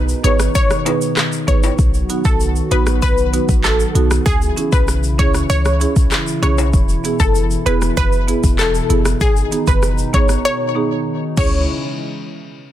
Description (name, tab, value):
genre	dancehall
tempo	97 BPM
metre	4/4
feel	straight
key	C# minor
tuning	A4 = 441 Hz
part	hollow soft pad	sustained chords	0.0-11.7 s	B2 to F#4	-25 LUFS	left 2 dB	chorus, sidechain pumping
part	clean 808-style bass	bass	0.0-11.7 s	E1 to C#2	-18 LUFS	equal	none
part	afro-pop drum kit	drums	0.1-11.5 s	crash cymbal, handclaps, hi-hat, kick drum, rim click, shaker	-18 LUFS	equal	soft clipping on snare
part	tube shaker and timbales	percussion	0.1-11.7 s	none	-29 LUFS	left 11 dB	none
part	analog pluck	melody	0.2-11.7 s	G#4 to C#5	-21 LUFS	left 2 dB	chorus, ping-pong delay
part	marimba with medium mallets	accompaniment	0.2-11.7 s	B3 to B4	-22 LUFS	right 6 dB	none
room	little or no reverb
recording	dense, heavily limited modern master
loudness	-13 LUFS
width	side -12 dB against mid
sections	0.0-1.8 A section; 1.8-11.7 B section; 11.7-12.7 C section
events	break 10.4-11.7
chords	0.0 G#m; 1.8 B; 4.3 C#m; 6.7 E; 9.2 G#m; 11.4 C#m; 11.7 N.C.